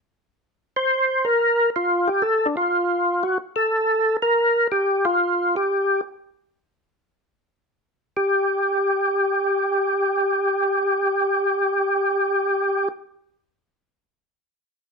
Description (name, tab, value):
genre	jazz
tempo	121 BPM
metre	4/4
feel	swing 68% on 8ths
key	G minor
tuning	A4 = 442 Hz
part	percussive tonewheel organ	solo	0.8-12.9 s	D4 to C5	-19 LUFS	equal	slow rotary speaker, overdrive, chorus vibrato
room	light reverb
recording	dark, warm production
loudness	-19 LUFS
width	side -4 dB against mid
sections	0.0-8.2 A section; 8.2-12.1 B section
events	none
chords	none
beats	| 0.24 0.74 1.23 1.73 | 2.22 2.72 3.21 3.71 | 4.20 4.70 5.19 5.69 | 6.18 6.68 7.17 7.67 | 8.16 8.66 9.15 9.65 | 10.14 10.64 11.13 11.63